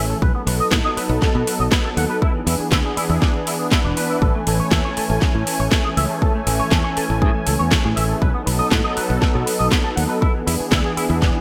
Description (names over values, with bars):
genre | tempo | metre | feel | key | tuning
nu-disco, nu disco | 120 BPM | 4/4 | straight | A major | A4 = 439 Hz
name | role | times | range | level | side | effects
warm analog pad | accompaniment | 0.0-11.4 s | E3 to G#5 | -25 LUFS | equal | chorus, sidechain pumping, digital delay
electric guitar with an envelope filter | riff | 0.0-11.4 s | E3 to F#5 | -28 LUFS | equal | ensemble chorus, low-pass filter, digital delay
modern bright fingered electric bass | bass | 0.0-11.3 s | E1 to B2 | -24 LUFS | equal | none
electronic kick drum | drums | 0.2-11.3 s | none | -21 LUFS | equal | none
house drum kit | drums | 0.5-11.3 s | hi-hat, snare drum | -26 LUFS | equal | gated reverb
room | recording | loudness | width
light reverb | bright 1980s-style digital production | -19 LUFS | mono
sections
0.0-11.4 A section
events
none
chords
0.2 B7; 2.2 E7; 4.2 Amaj7; 8.2 B7; 10.2 E7